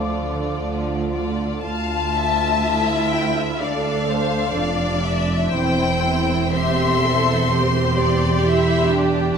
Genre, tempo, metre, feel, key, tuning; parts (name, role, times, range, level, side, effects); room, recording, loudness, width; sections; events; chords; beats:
classical, slow romantic movement for symphony orchestra; 54-67 BPM; 4/4; rubato; D minor; A4 = 438 Hz
rich studio violin section; melody; 0.0-9.4 s; D5 to C6; -24 LUFS; left 6 dB
rich symphonic violin section; second line; 0.0-9.4 s; F4 to F5; -26 LUFS; left 4 dB
silver concert flute; second line; 0.0-0.6 s; D6; -34 LUFS; left 3 dB
warm clarinet; second line; 0.0-1.3 s; F4; -34 LUFS; right 4 dB
rich chamber viola section; accompaniment; 0.0-9.4 s; A3 to A4; -23 LUFS; right 3 dB
warm bassoon; accompaniment; 0.0-1.2 s; F3; -30 LUFS; equal
clear chamber double bass section; bass; 0.0-9.4 s; E1 to D2; -26 LUFS; right 2 dB
rich symphonic cello section; bass; 0.0-9.4 s; D2 to D3; -24 LUFS; right 3 dB
moderate concert hall reverb, RT60 1.9 s; -17 LUFS; side -6 dB against mid
0.0-1.6 A section; 1.6-9.4 A section
0.0 Dm; 5.5 C/E
0.56 | 1.63 2.62 3.60 4.55 | 5.51 6.53 7.51 8.45 | 9.37